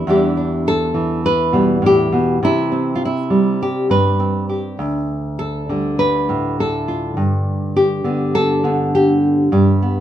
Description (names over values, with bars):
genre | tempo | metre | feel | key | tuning
folk, solo fingerstyle acoustic guitar | 102 BPM | 4/4 | straight | unclear | A4 = 439 Hz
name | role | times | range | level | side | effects
nylon-string guitar | solo | 0.0-10.0 s | D2 to B4 | -15 LUFS | equal | none
room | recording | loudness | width
moderate studio reverb, RT60 0.6 s | minimal, uncompressed stereo recording | -15 LUFS | side -11 dB against mid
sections
0.0-10.0 A section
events
none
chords
0.0 Em7; 2.4 C; 4.8 D5; 7.2 G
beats
| 0.08 0.66 1.25 1.84 | 2.43 3.02 3.61 4.21 | 4.80 5.40 6.00 6.59 | 7.18 7.77 8.35 8.94 | 9.52